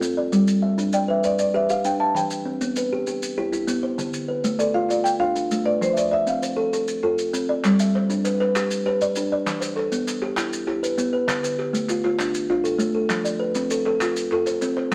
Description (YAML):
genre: southern african traditional, mbira-style interlocking cycle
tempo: 132 BPM (dotted quarters)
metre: 12/8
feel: straight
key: G mixolydian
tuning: A4 = 443 Hz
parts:
  - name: kalimba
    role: arpeggios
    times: 0.0-14.9 s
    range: D3 to E5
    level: -24 LUFS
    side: equal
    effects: none
  - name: maracas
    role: percussion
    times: 0.0-14.9 s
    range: none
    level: -37 LUFS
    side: equal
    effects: none
  - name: marimba with medium mallets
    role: melody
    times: 0.9-6.7 s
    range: C5 to A5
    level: -24 LUFS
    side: equal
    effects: none
  - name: group handclap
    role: percussion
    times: 7.6-14.9 s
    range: none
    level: -33 LUFS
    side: equal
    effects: none
room: moderate studio reverb, RT60 0.9 s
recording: vinyl crackle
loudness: -23 LUFS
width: mono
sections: 0.0-7.6 A section; 7.6-14.9 B section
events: none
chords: 0.3 G; 2.2 Em; 4.0 Dm; 5.8 F; 7.6 G; 9.5 Em; 11.3 Dm; 13.1 F